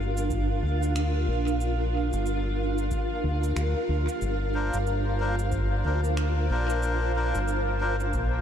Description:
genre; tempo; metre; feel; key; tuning
ambient dub; 92 BPM; 4/4; swing 60% on 16ths; G minor; A4 = 442 Hz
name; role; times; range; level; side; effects
granular cloud pad; sustained chords; 0.0-8.4 s; D4 to F5; -30 LUFS; right 1 dB; built-in reverb, analog chorus
deep dub fingered electric bass; bass; 0.0-8.4 s; G1 to D2; -27 LUFS; equal; tube saturation
drifting glass-harmonics texture; texture; 0.0-8.4 s; F4 to F5; -38 LUFS; right 1 dB; chorus, built-in reverb
electronic cabasa and finger snaps; drums; 0.2-8.3 s; none; -44 LUFS; right 1 dB; overdrive, small room reverb, dub echo
electronic kick drum; drums; 0.3-8.3 s; none; -32 LUFS; equal; small room reverb
melodica; stabs; 4.5-8.0 s; D4 to C5; -31 LUFS; left 2 dB; dub echo
room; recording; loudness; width
moderate huge ambient reverb, RT60 8.9 s; dreamy mix soaked in reverb; -24 LUFS; side -9 dB against mid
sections
0.0-8.4 A section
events
none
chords
0.0 Gm7; 4.2 Bbadd9/G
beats
0.31 0.96 | 1.61 2.26 2.91 3.57 | 4.22 4.87 5.52 6.17 | 6.83 7.48 8.13

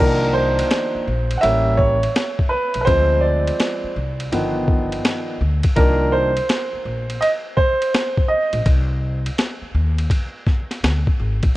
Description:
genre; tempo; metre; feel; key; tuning
hip hop, jazz-hop; 83 BPM; 4/4; swing 65% on 16ths; C minor; A4 = 440 Hz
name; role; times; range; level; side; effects
warm grand piano; accompaniment; 0.0-8.7 s; Eb3 to F#5; -19 LUFS; right 1 dB; none
upright bass; bass; 0.0-11.5 s; G1 to Eb2; -20 LUFS; left 1 dB; none
boom bap sampler-style drum kit; drums; 0.6-11.5 s; hi-hat, kick drum, ride cymbal, snare drum; -21 LUFS; equal; none
room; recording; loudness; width
small room ambience; worn, warbling old tape, cassette tape, warbly pitch drift; -17 LUFS; side -17 dB against mid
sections
0.0-11.6 A section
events
grand piano solo 0.0-11.6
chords
0.0 Cm11; 1.4 A7b9; 2.9 Dm7b5; 4.3 G7b13; 5.8 Cm9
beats
0.71 1.43 2.16 | 2.88 3.60 4.33 5.05 | 5.77 6.49 7.22 7.94 | 8.66 9.39 10.11 10.83

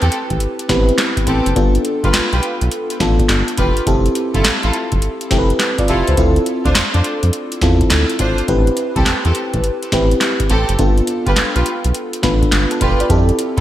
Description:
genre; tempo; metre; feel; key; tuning
R&B, new jack swing; 104 BPM; 4/4; swing 65% on 16ths; unclear; A4 = 440 Hz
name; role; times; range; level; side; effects
FM electric piano with soft pad layer; accompaniment; 0.0-13.6 s; B3 to E5; -18 LUFS; equal; chorus
warm studio string section; stabs; 0.0-13.6 s; C4 to C5; -22 LUFS; right 1 dB; digital delay
round analog bass; bass; 0.0-13.6 s; E1 to F2; -17 LUFS; equal; none
booming analog drum machine; drums; 0.0-13.6 s; handclaps, hi-hat, kick drum, snare drum; -17 LUFS; equal; gated reverb
room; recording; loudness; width
moderate lush hall reverb, RT60 1.9 s; bright 1980s-style digital production; -13 LUFS; side -13 dB against mid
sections
0.0-13.6 A section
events
none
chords
0.0 Am7; 1.6 G7; 3.9 Fmaj7; 6.2 Dm7; 8.5 Am7; 10.8 G7; 13.1 Fmaj7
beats
0.41 0.98 | 1.56 2.14 2.72 3.29 | 3.87 4.45 5.02 5.60 | 6.18 6.75 7.33 7.91 | 8.48 9.06 9.64 10.22 | 10.79 11.37 11.95 12.52 | 13.10

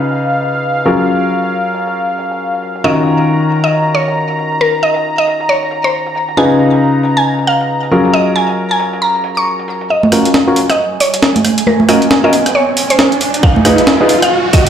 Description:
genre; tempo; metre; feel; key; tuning
UK garage, two-step garage; 136 BPM; 4/4; swing 60% on 16ths; unclear; A4 = 440 Hz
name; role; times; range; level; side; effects
warm analog pad; sustained chords; 0.0-14.7 s; F5 to Bb5; -20 LUFS; equal; chorus, tremolo, sidechain pumping
warm baby grand piano; stabs; 0.0-14.1 s; Db3 to Cb5; -14 LUFS; left 1 dB; low-pass filter, tape echo
breakbeat sampler-style drum kit; drums; 0.1-14.7 s; congas, hi-hat, rim click, snare drum; -14 LUFS; right 2 dB; low-pass filter on hats, low-pass filter on perc, low-pass filter on snare, low-pass filter on room
mallet-like synth pluck; melody; 2.8-14.7 s; Bb4 to Db6; -15 LUFS; right 1 dB; chorus, digital delay
riser; sound effects; 10.6-14.7 s; none; -17 LUFS; right 1 dB; none
electronic kick drum; drums; 13.4-14.6 s; none; -10 LUFS; right 1 dB; none
room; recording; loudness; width
moderate small room reverb, RT60 0.5 s; played on a big sound system in a bare room, large studio reverb; -10 LUFS; side -8 dB against mid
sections
0.0-9.9 A section; 9.9-14.7 B section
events
filter sweep on grand piano 0.0-9.9, 9.9-14.7; build-up 9.9-14.7; filter sweep on synth pluck 9.9-14.7; riser 10.6-14.7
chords
0.0 Db7; 0.9 Gbmaj7; 2.8 Ebm9; 6.4 Db7; 7.9 Gbmaj7; 9.9 Dbadd9; 13.4 Ebsus24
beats
0.20 0.64 | 1.08 1.52 1.96 2.40 | 2.84 3.28 3.73 4.17 | 4.61 5.05 5.49 5.93 | 6.37 6.81 7.25 7.70 | 8.14 8.58 9.02 9.46 | 9.90 10.34 10.78 11.22 | 11.67 12.11 12.55 12.99 | 13.43 13.87 14.31

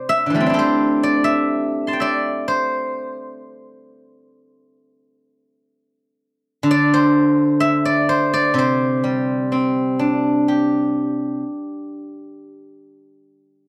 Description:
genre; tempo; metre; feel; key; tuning
chinese traditional, Chinese solo plucked strings; 63 BPM; 4/4; rubato; C gong mode; A4 = 437 Hz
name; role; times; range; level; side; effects
steel-string zither; solo; 0.0-13.4 s; C3 to C6; -19 LUFS; equal; none
room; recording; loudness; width
light reverb; dry, close 1970s-style studio recording; -18 LUFS; mono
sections
0.0-13.7 A section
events
none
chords
none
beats
0.06 1.03 1.99 | 2.93 3.87 4.80 5.72 | 6.65 7.59 8.55 9.51 | 10.46 11.42 12.39

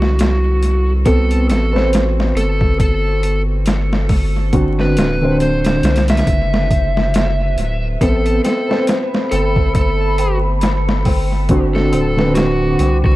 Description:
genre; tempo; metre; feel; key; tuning
trip hop; 69 BPM; 4/4; swing 57% on 16ths; A dorian; A4 = 440 Hz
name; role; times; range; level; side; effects
overdriven slide guitar; melody; 0.0-13.2 s; F#4 to E5; -21 LUFS; equal; dub echo
felt-muted upright piano; accompaniment; 0.0-13.2 s; D3 to C5; -19 LUFS; equal; tremolo, tape echo
round analog bass; bass; 0.0-13.2 s; D1 to C2; -17 LUFS; equal; none
boom bap sampler-style drum kit; drums; 0.0-13.2 s; hi-hat, kick drum, snare drum; -18 LUFS; equal; overdrive, tape echo
deep dark ambient pad; sustained chords; 9.0-13.2 s; A4 to D6; -26 LUFS; equal; chorus, built-in reverb
tabla; percussion; 8.0-13.2 s; none; -28 LUFS; left 3 dB; none
room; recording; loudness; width
little or no reverb; echo-heavy mix, vinyl crackle; -13 LUFS; side -17 dB against mid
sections
0.0-13.2 A section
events
none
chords
0.0 D7; 1.1 Amadd9; 4.5 D7; 8.0 Amadd9; 11.5 D7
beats
0.19 | 1.06 1.93 2.80 3.67 | 4.54 5.41 6.28 7.15 | 8.02 8.89 9.76 10.63 | 11.49 12.37

